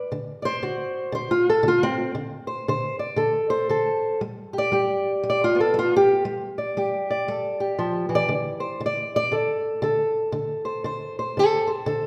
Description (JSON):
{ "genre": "acoustic country blues, solo or duo", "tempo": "117 BPM", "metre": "4/4", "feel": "swing 62% on 8ths", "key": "unclear", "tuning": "A4 = 441 Hz", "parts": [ { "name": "fingerpicked old ladder-braced acoustic guitar", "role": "solo", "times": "0.0-12.1 s", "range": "D3 to D5", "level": "-24 LUFS", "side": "equal", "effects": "none" } ], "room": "wet recital hall reverb, RT60 1.6 s", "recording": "recorded in a church or concert hall", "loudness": "-24 LUFS", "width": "mono", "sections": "0.0-12.1 A section", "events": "steel-string acoustic guitar solo 0.0-12.1", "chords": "0.1 D7; 4.2 G7; 8.3 D5" }